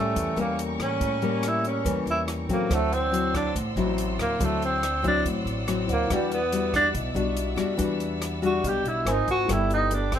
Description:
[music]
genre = bossa nova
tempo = 141 BPM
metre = 4/4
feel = straight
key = unclear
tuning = A4 = 440 Hz
[part]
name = breathy tenor saxophone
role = melody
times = 0.0-10.2 s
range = G3 to G4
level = -25 LUFS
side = right 1 dB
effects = plate reverb
[part]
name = nylon-string guitar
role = accompaniment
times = 0.0-10.2 s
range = A2 to Bb4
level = -28 LUFS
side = left 4 dB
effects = none
[part]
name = tine electric piano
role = accompaniment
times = 0.0-10.2 s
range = C#4 to Ab5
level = -36 LUFS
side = right 5 dB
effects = medium stereo tremolo
[part]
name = warm studio string section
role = sustained chords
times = 0.0-10.2 s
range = A4 to E6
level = -37 LUFS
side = equal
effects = none
[part]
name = upright bass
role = bass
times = 0.0-10.2 s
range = G1 to A2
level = -31 LUFS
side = right 1 dB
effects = none
[part]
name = open jazz drum kit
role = drums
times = 0.2-10.2 s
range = hi-hat, kick drum, rim click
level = -34 LUFS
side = equal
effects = none
[sound]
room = light reverb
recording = none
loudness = -23 LUFS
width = side -9 dB against mid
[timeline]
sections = 0.0-10.2 A section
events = tenor saxophone solo 0.0-10.2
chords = 0.0 A7b9; 2.7 D9; 6.1 Em9; 9.1 Ab69; 9.5 G69

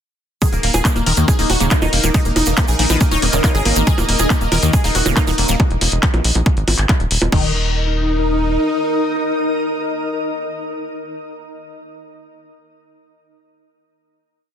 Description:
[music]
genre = psychedelic trance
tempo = 139 BPM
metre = 4/4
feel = straight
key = unclear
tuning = A4 = 440 Hz
[part]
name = supersaw stab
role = melody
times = 0.4-10.4 s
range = Bb3 to Db5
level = -23 LUFS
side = right 1 dB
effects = phaser, sidechain pumping, dub echo
[part]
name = pulsing gated texture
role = sustained chords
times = 0.4-10.4 s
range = Eb4 to Bb4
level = -24 LUFS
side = left 2 dB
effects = chorus, built-in reverb, sidechain pumping
[part]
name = liquid acid bass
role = riff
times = 0.4-7.5 s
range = Db3 to Eb4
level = -24 LUFS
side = moving between left 8 dB and right 2 dB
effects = phaser, auto-pan, sidechain pumping, dub echo
[part]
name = electronic kick drum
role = drums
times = 0.4-7.4 s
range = none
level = -16 LUFS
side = equal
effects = none
[part]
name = techno drum kit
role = drums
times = 0.4-7.4 s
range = bongos, crash cymbal, handclaps, hi-hat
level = -20 LUFS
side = equal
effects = none
[part]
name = tube shaker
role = percussion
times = 0.4-5.6 s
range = none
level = -27 LUFS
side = right 5 dB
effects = none
[part]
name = granular cloud pad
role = texture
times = 1.6-10.6 s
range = Eb4 to Eb6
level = -26 LUFS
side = equal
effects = built-in reverb, sidechain pumping
[part]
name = tight sequencer bass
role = bass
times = 0.5-8.6 s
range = Eb1 to Eb2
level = -18 LUFS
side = equal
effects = none
[part]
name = vowel-sweep wobble bass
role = second line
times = 1.7-5.5 s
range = Gb3 to Db4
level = -33 LUFS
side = left 3 dB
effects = none
[sound]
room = little or no reverb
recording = dense, heavily limited modern master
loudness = -14 LUFS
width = side -9 dB against mid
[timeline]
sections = 0.4-7.3 drop; 7.3-10.8 final chord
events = drop 0.4-7.3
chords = 0.4 Eb5

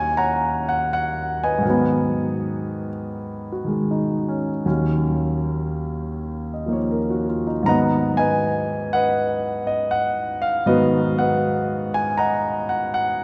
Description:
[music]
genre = solo jazz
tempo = 80 BPM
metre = 4/4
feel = swing 68% on 8ths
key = unclear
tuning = A4 = 440 Hz
[part]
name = warm concert grand piano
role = solo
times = 0.0-13.2 s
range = Eb2 to Bb5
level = -22 LUFS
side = equal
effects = none
[sound]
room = wet church reverb, RT60 3.0 s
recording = recorded in a church or concert hall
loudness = -22 LUFS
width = mono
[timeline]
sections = 0.0-13.2 A section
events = none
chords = 0.0 Ebm7; 1.6 Abm7; 4.6 Ebm7; 7.7 Abm7

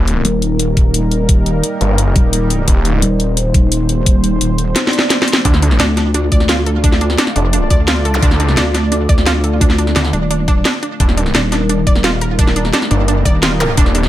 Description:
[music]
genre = dark technical drum and bass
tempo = 173 BPM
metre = 4/4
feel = straight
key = unclear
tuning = A4 = 440 Hz
[part]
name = sweeping resonant pad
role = sustained chords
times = 0.0-14.1 s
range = G3 to D5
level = -21 LUFS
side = equal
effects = chorus, vintage 12-bit sampler grit, sidechain pumping
[part]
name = snarling distorted saw bass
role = bass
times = 0.0-3.0, 5.5-14.1 s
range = Eb1 to D2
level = -14 LUFS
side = equal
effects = distortion, overdrive
[part]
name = drum and bass drum kit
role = drums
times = 0.1-14.1 s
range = hi-hat, snare drum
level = -17 LUFS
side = left 1 dB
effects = none
[part]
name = pulsing pluck wobble bass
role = bass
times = 0.2-13.8 s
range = Eb1 to D2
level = -16 LUFS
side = equal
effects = chorus
[part]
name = electronic kick drum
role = drums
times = 0.8-13.8 s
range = none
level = -12 LUFS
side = equal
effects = none
[part]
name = swell and zap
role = sound effects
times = 4.9-5.5, 8.1-8.2, 13.6-13.7 s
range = none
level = -23 LUFS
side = right 1 dB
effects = none
[part]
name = analog pluck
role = arpeggios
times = 5.5-14.0 s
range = D4 to D5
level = -20 LUFS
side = right 3 dB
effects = chorus, sidechain pumping, digital delay
[sound]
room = digital ambience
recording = none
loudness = -11 LUFS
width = side -13 dB against mid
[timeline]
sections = 0.0-14.1 A section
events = drum fill 4.8-5.5; swell 4.9-5.5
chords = 0.0 Eb; 5.5 Dm; 11.0 Eb

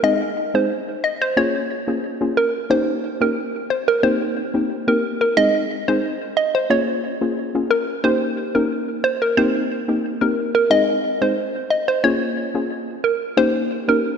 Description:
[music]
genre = dancehall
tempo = 90 BPM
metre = 4/4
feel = straight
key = Ab major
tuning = A4 = 440 Hz
[part]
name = hollow square pluck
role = melody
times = 0.0-14.0 s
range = Bb4 to Eb5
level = -20 LUFS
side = right 1 dB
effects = chorus, analog delay
[part]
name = soft round pluck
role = accompaniment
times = 0.0-14.0 s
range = Ab3 to Ab4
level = -22 LUFS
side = left 2 dB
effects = chorus
[sound]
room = wet lush hall reverb, RT60 2.5 s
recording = dreamy mix soaked in reverb, nothing above 10.9 kHz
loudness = -18 LUFS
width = side -6 dB against mid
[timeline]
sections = 0.0-5.4 A section; 5.4-14.2 B section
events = none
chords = 0.0 Ab; 1.4 Bbm7; 2.7 Eb7; 4.0 Cm7; 5.4 Ab; 6.7 Bbm7; 8.0 Eb7; 9.4 Cm7; 10.7 Ab; 12.0 Bbm7; 13.4 Eb7

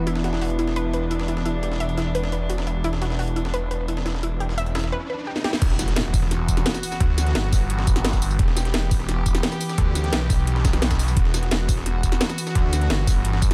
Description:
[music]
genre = dark technical drum and bass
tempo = 173 BPM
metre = 4/4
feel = straight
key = E minor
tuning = A4 = 440 Hz
[part]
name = rich chamber string section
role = sustained chords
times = 0.0-13.5 s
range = E3 to G4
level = -32 LUFS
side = equal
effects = sidechain pumping
[part]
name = snarling distorted saw bass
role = bass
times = 0.0-13.5 s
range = E1 to D2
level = -26 LUFS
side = equal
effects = distortion
[part]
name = warbly tape-like pad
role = texture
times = 0.0-4.9 s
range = B3 to E5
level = -35 LUFS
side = equal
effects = chorus, built-in reverb, sidechain pumping
[part]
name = analog pluck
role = arpeggios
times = 0.1-5.5 s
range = E4 to E5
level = -32 LUFS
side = equal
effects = chorus, sidechain pumping, digital delay
[part]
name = breakbeat sampler-style drum kit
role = drums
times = 0.1-13.5 s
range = hi-hat, snare drum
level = -37 LUFS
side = equal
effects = high-pass filter on hats, high-pass filter on snare
[part]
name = riser and impact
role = sound effects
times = 4.5-7.0 s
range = none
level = -35 LUFS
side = equal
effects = none
[part]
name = drum and bass drum kit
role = drums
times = 5.4-13.5 s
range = crash cymbal, hi-hat, snare drum, tambourine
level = -29 LUFS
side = equal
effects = low-pass filter on snare, low-pass filter on hats, low-pass filter on cymbals, low-pass filter on perc, low-pass filter on room
[part]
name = electronic kick drum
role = drums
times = 5.6-13.5 s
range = none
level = -23 LUFS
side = equal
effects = none
[sound]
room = light reverb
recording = none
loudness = -23 LUFS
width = mono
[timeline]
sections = 0.0-5.6 A section; 5.6-13.5 B section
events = riser 4.5-5.6; drum fill 5.4; drop 5.6-13.5; impact 5.6-7.0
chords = 0.0 E5

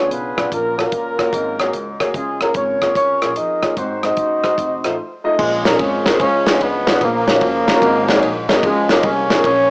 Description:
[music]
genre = uptempo gospel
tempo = 148 BPM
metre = 4/4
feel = swing 65% on 8ths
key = Db major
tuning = A4 = 440 Hz
[part]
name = mellow horn section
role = melody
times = 0.0-9.7 s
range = Db3 to Eb5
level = -17 LUFS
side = equal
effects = cassette tape, plate reverb
[part]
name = clear upright piano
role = accompaniment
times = 0.0-9.5 s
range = Ab2 to Eb5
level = -19 LUFS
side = equal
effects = plate reverb
[part]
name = upright bass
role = bass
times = 0.0-9.7 s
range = F1 to F2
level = -28 LUFS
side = equal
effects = none
[part]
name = modern studio drum kit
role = drums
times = 0.1-9.6 s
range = crash cymbal, hi-hat, kick drum, ride cymbal, rim click, snare drum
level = -21 LUFS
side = equal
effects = none
[sound]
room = moderate booth ambience, RT60 0.2 s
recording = home recording on cassette, small speaker sound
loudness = -14 LUFS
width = side -33 dB against mid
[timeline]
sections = 0.0-5.4 A section; 5.4-9.7 B section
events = none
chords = 0.0 Db7b9; 0.5 Gbmaj7/Bb; 1.3 Ab9sus4; 2.1 Db6; 3.8 Ab7; 4.6 F7; 5.4 Bbm7; 6.2 Db7b9; 7.0 Gbmaj7/Bb; 7.8 Ab9sus4; 8.6 Db6

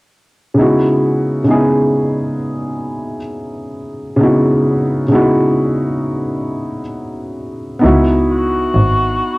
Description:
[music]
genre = lo-fi hip hop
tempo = 66 BPM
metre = 4/4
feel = swing 65% on 16ths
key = C# minor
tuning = A4 = 440 Hz
[part]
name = dark upright piano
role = accompaniment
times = 0.5-9.4 s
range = C#3 to G#4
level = -14 LUFS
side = equal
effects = low-pass filter, cassette tape
[part]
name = rich double bass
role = bass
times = 7.8-9.1 s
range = G#1 to C#2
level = -15 LUFS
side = equal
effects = none
[part]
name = breathy tenor saxophone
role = melody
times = 8.3-9.4 s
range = F#4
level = -17 LUFS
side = left 1 dB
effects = low-pass filter, cassette tape
[sound]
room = moderate studio reverb, RT60 0.7 s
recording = home recording on cassette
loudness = -12 LUFS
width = side -23 dB against mid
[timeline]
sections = 0.6-7.8 A section; 7.8-9.4 B section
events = none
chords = 0.6 C#m11

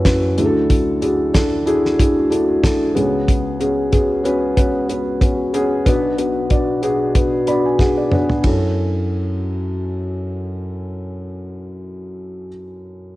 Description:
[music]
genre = piano-driven pop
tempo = 93 BPM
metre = 4/4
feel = swing 56% on 16ths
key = F# minor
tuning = A4 = 440 Hz
[part]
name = felt-muted upright piano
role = accompaniment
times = 0.0-13.2 s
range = F#1 to B5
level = -17 LUFS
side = equal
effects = cassette tape
[part]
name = damped 70s drum kit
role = drums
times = 0.1-8.6 s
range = hi-hat, kick drum, ride cymbal, snare drum, toms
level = -17 LUFS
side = equal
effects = none
[sound]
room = light reverb, small room ambience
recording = home recording on cassette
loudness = -15 LUFS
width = side -17 dB against mid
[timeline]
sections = 0.0-8.4 A section; 8.4-11.0 B section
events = felt piano fill 7.2-8.4; drum fill 7.8-8.4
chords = 0.4 Dadd9; 3.0 C#7sus4; 5.9 Bm; 8.4 F#m7

